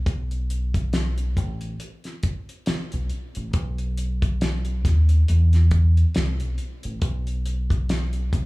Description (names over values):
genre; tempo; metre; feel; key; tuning
R&B, neo-soul; 69 BPM; 4/4; swing 56% on 16ths; unclear; A4 = 441 Hz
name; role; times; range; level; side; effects
deep dub fingered electric bass; bass; 0.1-8.5 s; A1 to E2; -21 LUFS; equal; none
cloth-damped thuddy drum kit; drums; 0.1-8.5 s; hi-hat, kick drum, snare drum; -26 LUFS; equal; none
room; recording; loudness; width
little or no reverb; small room ambience; -20 LUFS; side -22 dB against mid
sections
0.0-8.5 A section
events
none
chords
none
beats
| 0.07 0.93 1.80 2.67 | 3.54 4.41 5.28 6.15 | 7.02 7.89